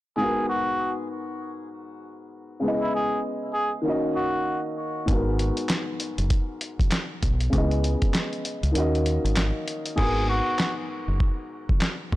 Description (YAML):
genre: hip hop, boom-bap hip-hop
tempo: 98 BPM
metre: 4/4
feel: swing 60% on 16ths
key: G# minor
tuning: A4 = 440 Hz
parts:
  - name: trumpet with cup mute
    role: melody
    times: 0.2-4.6, 10.0-10.7 s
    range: E4 to G#4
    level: -28 LUFS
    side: equal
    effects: high-pass filter, low-pass filter, digital delay
  - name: dark upright piano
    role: accompaniment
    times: 0.2-12.2 s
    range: G#2 to D#5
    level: -28 LUFS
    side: left 1 dB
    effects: cassette tape, high-pass filter, low-pass filter
  - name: deep dub fingered electric bass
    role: bass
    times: 5.1-12.2 s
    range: F#1 to D#2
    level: -25 LUFS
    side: equal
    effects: transformer saturation
  - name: dusty soul sampler-style drum kit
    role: drums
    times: 5.1-12.2 s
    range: crash cymbal, handclaps, hi-hat, kick drum, snare drum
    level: -25 LUFS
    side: equal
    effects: none
room: little or no reverb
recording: blown-out, overdriven recording, overdrive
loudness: -23 LUFS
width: side -17 dB against mid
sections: 0.2-10.0 A section; 10.0-12.2 B section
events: kick muted 8.8-10.0; hi-hats muted 10.0-12.2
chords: 0.2 G#m7; 2.6 C#m7; 3.9 D#m7; 5.1 G#m7; 7.5 C#m7; 8.8 D#m7; 10.0 G#m7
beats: | 0.18 0.79 1.41 2.02 | 2.63 3.24 3.85 4.47 | 5.08 5.69 6.30 6.92 | 7.53 8.14 8.75 9.37 | 9.98 10.59 11.20 11.81